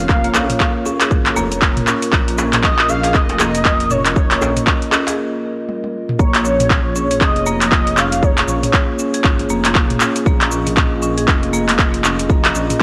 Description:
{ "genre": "afro house", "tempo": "118 BPM", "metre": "4/4", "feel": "swing 59% on 16ths", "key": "Bb minor", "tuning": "A4 = 440 Hz", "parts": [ { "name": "expressive portamento lead", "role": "melody", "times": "0.0-8.7 s", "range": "Db5 to F5", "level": "-23 LUFS", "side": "equal", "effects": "ensemble chorus, tape echo" }, { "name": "dark analog pad", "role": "sustained chords", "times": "0.0-12.8 s", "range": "Bb3 to Eb5", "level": "-26 LUFS", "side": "equal", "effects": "chorus, sidechain pumping" }, { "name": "dark detuned saw bass", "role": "bass", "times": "0.0-12.7 s", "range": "F1 to Bb1", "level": "-26 LUFS", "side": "equal", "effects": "sidechain pumping" }, { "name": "marimba with medium hard mallets", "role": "arpeggios", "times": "0.1-12.6 s", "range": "Bb3 to Ab4", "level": "-25 LUFS", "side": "equal", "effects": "sidechain pumping, tape echo" }, { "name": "afro-pop drum kit", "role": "drums", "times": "0.1-12.8 s", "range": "cabasa, handclaps, hi-hat, toms", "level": "-20 LUFS", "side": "equal", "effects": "overdrive" }, { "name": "electronic kick drum", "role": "drums", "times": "0.1-12.8 s", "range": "none", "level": "-18 LUFS", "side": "equal", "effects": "none" }, { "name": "djembe", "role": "percussion", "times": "0.3-5.2 s", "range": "none", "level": "-28 LUFS", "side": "equal", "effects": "none" } ], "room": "light reverb, digital ambience", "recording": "dry, gritty hardware recording, cassette tape", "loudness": "-16 LUFS", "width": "mono", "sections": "0.0-6.2 A section; 6.2-12.8 B section", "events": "break 5.2-6.2; drum fill 5.7-6.2; drop 6.2-12.8", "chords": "0.0 Bbm; 6.2 Bbm7" }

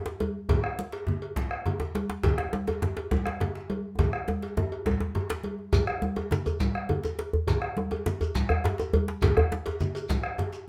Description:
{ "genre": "west african traditional, West African drum ensemble", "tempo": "138 BPM (dotted quarters)", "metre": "12/8", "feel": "straight", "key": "none", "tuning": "none", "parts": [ { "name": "djembe", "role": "percussion", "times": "0.1-10.7 s", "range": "none", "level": "-34 LUFS", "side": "equal", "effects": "none" }, { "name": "djembe", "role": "percussion", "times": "0.1-9.8 s", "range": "none", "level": "-32 LUFS", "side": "equal", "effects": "none" }, { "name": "congas", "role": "percussion", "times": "0.2-10.5 s", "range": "none", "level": "-36 LUFS", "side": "equal", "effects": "none" }, { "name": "cowbell", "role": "percussion", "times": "0.2-10.5 s", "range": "none", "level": "-38 LUFS", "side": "equal", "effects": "none" }, { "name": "bombo", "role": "percussion", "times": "0.5-10.4 s", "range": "none", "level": "-32 LUFS", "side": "equal", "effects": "none" }, { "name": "shekere", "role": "percussion", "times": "5.7-10.6 s", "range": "none", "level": "-41 LUFS", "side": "equal", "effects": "none" } ], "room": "moderate studio reverb, RT60 0.6 s", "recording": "none", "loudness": "-29 LUFS", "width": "mono", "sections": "0.0-5.7 A section; 5.7-10.7 B section", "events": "drum fill 4.0-5.7", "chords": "none" }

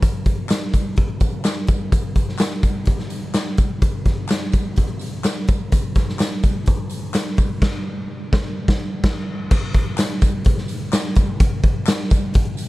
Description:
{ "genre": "soul", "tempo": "126 BPM", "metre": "4/4", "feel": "straight", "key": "none", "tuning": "none", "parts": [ { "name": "raw garage drum kit", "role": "drums", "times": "0.0-12.7 s", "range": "crash cymbal, hi-hat, kick drum, snare drum", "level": "-18 LUFS", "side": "equal", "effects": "none" }, { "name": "tambourine and handclaps", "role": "percussion", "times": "0.0-12.7 s", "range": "none", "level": "-33 LUFS", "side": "left 2 dB", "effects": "none" } ], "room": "little or no reverb", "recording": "dark, warm production", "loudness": "-18 LUFS", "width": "side -18 dB against mid", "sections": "0.0-9.5 A section; 9.5-12.7 B section", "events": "band accent 7.6-9.5", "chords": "none" }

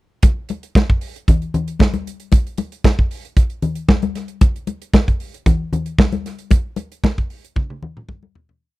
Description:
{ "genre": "disco", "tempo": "115 BPM", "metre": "4/4", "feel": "straight", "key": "none", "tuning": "none", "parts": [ { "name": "modern studio drum kit", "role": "drums", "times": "0.2-8.6 s", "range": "hi-hat, kick drum, snare drum, toms", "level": "-14 LUFS", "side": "right 1 dB", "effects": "none" }, { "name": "congas", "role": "percussion", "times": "0.2-8.3 s", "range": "none", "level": "-21 LUFS", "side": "left 4 dB", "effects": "none" } ], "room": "little or no reverb", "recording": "dry, close 1970s-style studio recording", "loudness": "-16 LUFS", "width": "side -18 dB against mid", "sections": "0.2-8.6 groove", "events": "fade-out 6.5-8.6; drum fill 7.6-8.6", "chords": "none" }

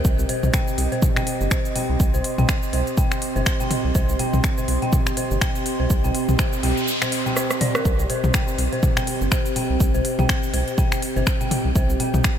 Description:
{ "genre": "minimal techno", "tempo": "123 BPM", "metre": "4/4", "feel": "swing 57% on 16ths", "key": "C minor", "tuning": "A4 = 440 Hz", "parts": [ { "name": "rubbery square bass", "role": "bass", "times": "0.0-12.2 s", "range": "G1 to C2", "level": "-23 LUFS", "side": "equal", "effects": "tube saturation, sidechain pumping" }, { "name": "electronic kick drum", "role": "drums", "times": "0.0-12.4 s", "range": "none", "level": "-22 LUFS", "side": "equal", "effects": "overdrive" }, { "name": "minimal click drum kit", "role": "drums", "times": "0.0-12.4 s", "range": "finger snaps, hi-hat, rim click, shaker", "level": "-27 LUFS", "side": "equal", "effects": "overdrive" }, { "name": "warbly tape-like pad", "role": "texture", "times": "0.0-12.4 s", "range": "C4 to C6", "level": "-27 LUFS", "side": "right 2 dB", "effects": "chorus, built-in reverb, sidechain pumping" }, { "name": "dark detuned synth bell", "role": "riff", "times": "0.3-12.1 s", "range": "Bb4 to G5", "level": "-29 LUFS", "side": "equal", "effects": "chorus, sidechain pumping, diffuse ambient delay" }, { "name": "electronic congas and toms", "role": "percussion", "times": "0.3-12.2 s", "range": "none", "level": "-28 LUFS", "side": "left 3 dB", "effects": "diffuse ambient delay" }, { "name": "noise sweep", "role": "sound effects", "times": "6.3-7.9 s", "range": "none", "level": "-31 LUFS", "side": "equal", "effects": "none" } ], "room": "light reverb", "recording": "none", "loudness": "-19 LUFS", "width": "side -9 dB against mid", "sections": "0.0-12.4 A section", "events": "noise sweep 6.3-7.9; drum fill 7.4-7.9", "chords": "0.0 Cm" }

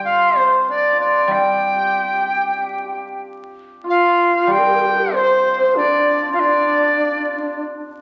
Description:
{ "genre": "chinese traditional, Chinese chamber ensemble", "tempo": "95 BPM", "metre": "4/4", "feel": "rubato", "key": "unclear", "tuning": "A4 = 439 Hz", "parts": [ { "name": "reedy dizi", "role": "melody", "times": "0.0-7.7 s", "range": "C5 to G5", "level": "-20 LUFS", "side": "equal", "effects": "none" }, { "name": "hammered dulcimer", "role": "second line", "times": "0.0-8.0 s", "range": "C4 to G4", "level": "-23 LUFS", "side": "equal", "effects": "none" }, { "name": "guzheng", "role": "accompaniment", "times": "0.0-6.4 s", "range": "G3", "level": "-26 LUFS", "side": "equal", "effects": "none" }, { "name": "breathy bright low xiao", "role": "second line", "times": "3.8-7.6 s", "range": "D4 to C5", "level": "-24 LUFS", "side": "equal", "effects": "none" } ], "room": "wet recital hall reverb, RT60 1.4 s", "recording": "very old 78 rpm record, vinyl crackle, nothing above 7.9 kHz", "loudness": "-17 LUFS", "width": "mono", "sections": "0.0-3.9 A section; 3.9-8.0 B section", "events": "none", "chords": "none" }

